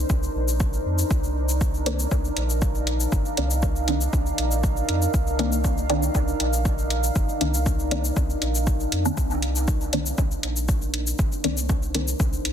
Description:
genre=dub techno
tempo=119 BPM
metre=4/4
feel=straight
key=C minor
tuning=A4 = 439 Hz
part: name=deep dark ambient pad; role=sustained chords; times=0.0-12.5 s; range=D4 to F5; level=-29 LUFS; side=right 1 dB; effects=chorus, built-in reverb, sidechain pumping
part: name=filtered dub chord stab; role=stabs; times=0.0-12.1 s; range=Eb3 to D4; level=-29 LUFS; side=equal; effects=phaser, cassette tape, dub echo
part: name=soft dub sub bass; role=bass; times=0.0-12.5 s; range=G1 to F2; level=-26 LUFS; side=equal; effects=tube saturation, sidechain pumping
part: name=electronic kick drum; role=drums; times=0.1-12.3 s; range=none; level=-24 LUFS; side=equal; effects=overdrive
part: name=electronic shaker and hi-hat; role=drums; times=0.1-12.5 s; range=none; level=-30 LUFS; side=left 2 dB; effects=overdrive
room=light reverb, digital ambience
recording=dense, heavily limited modern master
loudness=-21 LUFS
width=side -9 dB against mid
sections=0.0-12.5 A section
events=filter sweep on synth stab 0.0-12.5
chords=0.0 Cm9

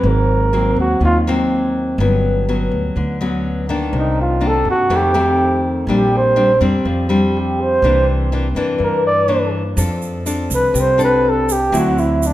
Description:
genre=bossa nova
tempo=123 BPM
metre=4/4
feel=straight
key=unclear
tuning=A4 = 440 Hz
part: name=breathy flugelhorn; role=melody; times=0.0-12.3 s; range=D4 to D5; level=-16 LUFS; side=right 1 dB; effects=none
part: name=nylon-string guitar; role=accompaniment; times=0.0-12.3 s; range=F2 to A4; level=-18 LUFS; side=left 2 dB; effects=none
part: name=upright bass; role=bass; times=0.0-12.3 s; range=G1 to G2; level=-20 LUFS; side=equal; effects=none
part: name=tube shaker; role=percussion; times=9.8-12.3 s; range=none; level=-29 LUFS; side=right 7 dB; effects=none
room=wet recital hall reverb, RT60 1.6 s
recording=minimal, uncompressed stereo recording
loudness=-14 LUFS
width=side -14 dB against mid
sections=0.0-12.3 A section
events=flugelhorn solo 0.0-12.3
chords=0.0 G#9; 2.0 Gmaj7#11; 3.9 Cm9; 4.9 F7; 5.9 Bb69; 7.8 C9; 9.8 F6; 11.7 D9

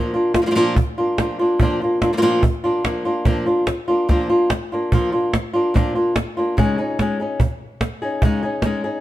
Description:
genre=flamenco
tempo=145 BPM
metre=4/4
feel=straight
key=unclear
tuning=A4 = 441 Hz
part: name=flamenco guitar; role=melody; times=0.0-9.0 s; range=Bb2 to Ab4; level=-18 LUFS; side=equal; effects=none
part: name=cajon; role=percussion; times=0.1-8.8 s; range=none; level=-20 LUFS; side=right 1 dB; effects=none
room=moderate stone room reverb, RT60 1.4 s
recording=close, detailed microphones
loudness=-17 LUFS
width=side -14 dB against mid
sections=0.0-9.0 A section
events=none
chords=0.0 Bb; 6.6 Dbsus2

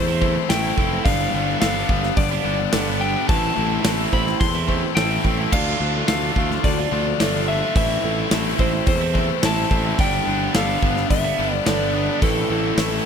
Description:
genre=post-rock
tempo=108 BPM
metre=4/4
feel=straight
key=A minor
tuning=A4 = 440 Hz
part: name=electric slide guitar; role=melody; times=0.0-13.1 s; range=A4 to C6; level=-25 LUFS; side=left 3 dB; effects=tape echo
part: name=ethereal airy pad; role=sustained chords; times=0.1-13.1 s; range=D4 to A5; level=-34 LUFS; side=right 3 dB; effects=none
part: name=felt-muted upright piano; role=arpeggios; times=0.0-13.1 s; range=A4 to E6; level=-34 LUFS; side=right 6 dB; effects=tape echo
part: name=twangy electric guitar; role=arpeggios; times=0.0-13.1 s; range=G2 to E4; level=-31 LUFS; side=left 4 dB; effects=none
part: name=biting overdriven guitar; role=riff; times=0.0-13.1 s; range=G2 to F4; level=-26 LUFS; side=left 13 dB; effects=none
part: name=fuzz fingered electric bass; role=bass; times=0.0-13.0 s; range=F1 to E2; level=-25 LUFS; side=equal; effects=overdrive
part: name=cranked stack guitar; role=riff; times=0.1-13.1 s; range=G2 to F4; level=-26 LUFS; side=right 13 dB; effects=overdrive
part: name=big rock drum kit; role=drums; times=0.2-12.9 s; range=crash cymbal, hi-hat, kick drum, snare drum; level=-23 LUFS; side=equal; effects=none
room=studio ambience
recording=none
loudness=-18 LUFS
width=side -7 dB against mid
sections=0.0-13.1 A section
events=none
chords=0.0 Am; 1.1 G; 3.3 Am; 5.5 Dmadd9; 7.8 Am; 10.0 G; 12.2 Am

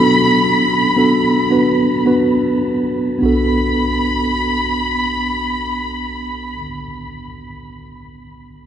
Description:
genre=pop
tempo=50-59 BPM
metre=4/4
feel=straight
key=B minor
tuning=A4 = 440 Hz
part: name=warm studio violin section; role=melody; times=0.0-6.6 s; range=B5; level=-19 LUFS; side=left 1 dB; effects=diffuse ambient delay
part: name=mellow tine electric piano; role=accompaniment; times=0.0-8.7 s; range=B1 to B4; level=-16 LUFS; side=right 1 dB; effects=medium stereo tremolo
room=wet cathedral reverb, RT60 6.2 s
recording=dreamy mix soaked in reverb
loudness=-14 LUFS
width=side -9 dB against mid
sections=0.0-3.2 A section; 3.2-8.0 B section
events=slowing down 0.0-3.2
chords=0.0 Bm7

